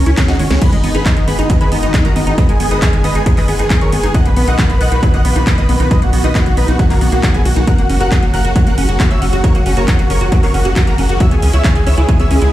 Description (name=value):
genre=uplifting trance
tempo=136 BPM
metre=4/4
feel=straight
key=G# minor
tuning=A4 = 440 Hz
part: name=dense compressed supersaw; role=melody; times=0.0-12.5 s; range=B3 to F#5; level=-20 LUFS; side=equal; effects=sidechain pumping, dub echo
part: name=wide unison pluck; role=second line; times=0.0-12.5 s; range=C#5 to F#6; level=-27 LUFS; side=equal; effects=sidechain pumping, digital delay
part: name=tight sequencer bass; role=bass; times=0.0-12.5 s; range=F#1 to C#2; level=-16 LUFS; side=equal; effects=sidechain pumping
part: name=liquid acid bass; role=arpeggios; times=0.1-12.4 s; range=F#3 to F#4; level=-22 LUFS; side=right 1 dB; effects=phaser, analog chorus, sidechain pumping, digital delay
part: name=techno drum kit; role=drums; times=0.1-12.5 s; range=crash cymbal, handclaps, hi-hat, snare drum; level=-23 LUFS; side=equal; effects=sidechain pumping on hats, sidechain pumping on cymbals
part: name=electronic kick drum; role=drums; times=0.2-12.2 s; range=none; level=-14 LUFS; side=equal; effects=overdrive
part: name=supersaw pad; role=sustained chords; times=0.6-12.5 s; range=C#3 to G#4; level=-23 LUFS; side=equal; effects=phaser, sidechain pumping
room=light reverb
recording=played on a big sound system in a bare room, large studio reverb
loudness=-10 LUFS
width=side -14 dB against mid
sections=0.0-12.5 A section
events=drum fill 0.2-0.6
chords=0.0 C#5; 0.6 G#m7; 4.1 Bmaj7; 7.7 F#; 11.2 C#m7